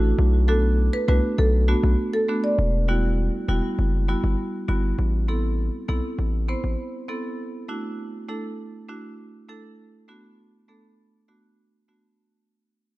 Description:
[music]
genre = dancehall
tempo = 100 BPM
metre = 4/4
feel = straight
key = E minor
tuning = A4 = 440 Hz
[part]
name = hard-hitting 808-style bass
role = bass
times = 0.0-6.8 s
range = E1 to C2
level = -21 LUFS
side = equal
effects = none
[part]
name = marimba with medium hard mallets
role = melody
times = 0.5-2.6 s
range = F#4 to D5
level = -26 LUFS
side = right 1 dB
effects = none
[part]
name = marimba with medium mallets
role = accompaniment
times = 0.5-12.0 s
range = G3 to C5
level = -28 LUFS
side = right 1 dB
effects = none
[sound]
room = studio ambience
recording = dark, warm production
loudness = -21 LUFS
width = side -18 dB against mid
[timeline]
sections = 0.0-2.6 A section; 2.6-12.2 B section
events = fade-out 2.6-12.2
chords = 0.2 Bm7; 2.6 Emadd9; 5.0 Amadd9; 7.4 Dadd9; 9.8 Bm7

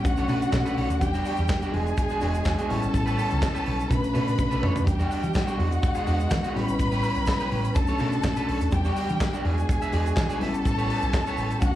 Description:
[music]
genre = disco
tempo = 124 BPM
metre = 4/4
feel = straight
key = unclear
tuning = A4 = 440 Hz
[part]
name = rich studio violin section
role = second line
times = 0.0-11.8 s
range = F#4 to B5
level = -30 LUFS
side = left 1 dB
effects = plate reverb, slapback echo
[part]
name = electric guitar at the edge of break-up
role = accompaniment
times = 0.0-11.7 s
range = G3 to E5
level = -33 LUFS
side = right 3 dB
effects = spring reverb, plate reverb, slapback echo
[part]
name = mellow tine electric piano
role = accompaniment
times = 0.0-11.8 s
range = F#3 to G4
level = -29 LUFS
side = left 2 dB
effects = plate reverb, slapback echo
[part]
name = modern studio drum kit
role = drums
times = 0.0-11.7 s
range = handclaps, hi-hat, kick drum, snare drum, toms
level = -27 LUFS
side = equal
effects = none
[part]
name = tube shaker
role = percussion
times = 0.0-11.7 s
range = none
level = -51 LUFS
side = left 2 dB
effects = none
[part]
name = hollow-body short-scale fingered electric bass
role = bass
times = 0.1-11.7 s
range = E1 to E3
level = -27 LUFS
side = equal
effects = none
[sound]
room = light reverb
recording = live gig heard through the venue's PA, club reverb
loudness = -22 LUFS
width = side -13 dB against mid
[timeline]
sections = 0.0-11.8 A section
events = drum fill 4.4-4.9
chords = 0.0 Bm7; 1.0 Em9; 1.7 E9; 2.7 A9; 3.9 Bm7; 4.9 Em9; 5.6 E9; 6.6 A9; 7.8 Bm7; 8.7 Em9; 9.4 E9; 10.4 A9

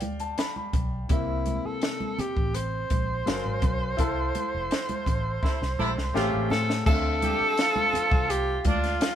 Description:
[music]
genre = lush 1970s-style soul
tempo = 83 BPM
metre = 4/4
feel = straight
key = D minor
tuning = A4 = 441 Hz
[part]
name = warm concert grand piano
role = accompaniment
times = 0.0-9.2 s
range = C3 to B5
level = -33 LUFS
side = left 4 dB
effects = none
[part]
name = vintage muted fingered electric bass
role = bass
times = 0.0-9.0 s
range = F1 to A2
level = -31 LUFS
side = equal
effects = none
[part]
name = compact cocktail drum kit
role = drums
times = 0.0-9.2 s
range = crash cymbal, hi-hat, kick drum, snare drum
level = -27 LUFS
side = equal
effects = none
[part]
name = congas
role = percussion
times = 0.0-9.2 s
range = none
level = -36 LUFS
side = right 2 dB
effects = none
[part]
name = breathy tenor saxophone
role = melody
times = 1.1-9.2 s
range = E4 to C5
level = -28 LUFS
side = right 1 dB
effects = none
[part]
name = warm horn section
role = stabs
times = 5.4-8.9 s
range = C3 to G4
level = -31 LUFS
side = right 1 dB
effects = none
[sound]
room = moderate studio reverb, RT60 0.7 s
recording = band playing live in one room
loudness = -24 LUFS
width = side -10 dB against mid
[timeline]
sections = 0.0-6.9 A section; 6.9-9.2 B section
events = grand piano fill 0.0-1.1; band accent 4.0-6.9; drum fill 5.4-6.9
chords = 0.0 G7; 1.1 C7; 3.3 F#maj7; 4.0 Fmaj7; 6.1 A7alt; 6.9 Dm9

